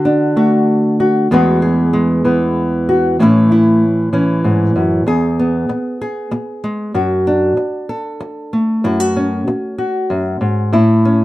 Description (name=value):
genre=folk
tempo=96 BPM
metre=3/4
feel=straight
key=E mixolydian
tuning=A4 = 445 Hz
part: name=nylon-string guitar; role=solo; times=0.0-11.2 s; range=E2 to A4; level=-12 LUFS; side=equal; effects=none
room=moderate studio reverb, RT60 0.5 s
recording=dark, warm production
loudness=-12 LUFS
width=side -16 dB against mid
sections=0.0-5.1 A section; 5.1-11.2 A section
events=none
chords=0.0 D; 1.3 Eadd9; 3.2 A; 5.1 E; 7.0 D/F#; 8.8 F#5; 10.7 A